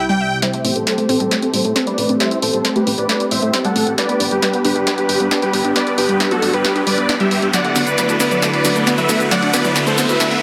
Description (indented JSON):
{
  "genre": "uplifting trance",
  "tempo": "135 BPM",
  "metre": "4/4",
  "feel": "straight",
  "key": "A dorian",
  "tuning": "A4 = 437 Hz",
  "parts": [
    { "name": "dense compressed supersaw", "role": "melody", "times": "0.0-10.4 s", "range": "F#4 to G5", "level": "-21 LUFS", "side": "equal", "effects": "low-pass filter, digital delay" },
    { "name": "lush unison pad", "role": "sustained chords", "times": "0.0-10.4 s", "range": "C2 to G4", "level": "-25 LUFS", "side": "equal", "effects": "chorus" },
    { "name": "unison pluck", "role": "arpeggios", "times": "0.0-10.4 s", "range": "F#3 to E5", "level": "-24 LUFS", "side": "equal", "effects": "tape echo" },
    { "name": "punchy analog drum machine", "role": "drums", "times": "0.4-10.4 s", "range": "hi-hat, shaker, snare drum, toms", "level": "-23 LUFS", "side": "equal", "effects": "high-pass filter on snare, high-pass filter on hats, high-pass filter on perc, high-pass filter on toms" },
    { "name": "riser", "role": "sound effects", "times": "2.4-10.4 s", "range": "none", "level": "-28 LUFS", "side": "equal", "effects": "none" },
    { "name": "solid FM bass", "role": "bass", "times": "0.6-10.2 s", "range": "D1 to A2", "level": "-28 LUFS", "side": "equal", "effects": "high-pass filter" }
  ],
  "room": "moderate lush hall reverb, RT60 2.0 s",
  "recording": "none",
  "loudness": "-16 LUFS",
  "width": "mono",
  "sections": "0.4-10.4 A section",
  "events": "build-up 0.4-10.4; drum fill 0.4-10.4; filter sweep on supersaw synth 0.4-10.4; filter sweep on synth arpeggio sound 0.4-10.4; riser 2.4-10.4",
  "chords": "0.4 Am7; 4.0 G; 7.5 D6",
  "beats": "| 0.42 0.87 1.31 1.76 | 2.20 2.65 3.09 3.54 | 3.98 4.42 4.87 5.31 | 5.76 6.20 6.65 7.09 | 7.54 7.98 8.42 8.87 | 9.31 9.76 10.20"
}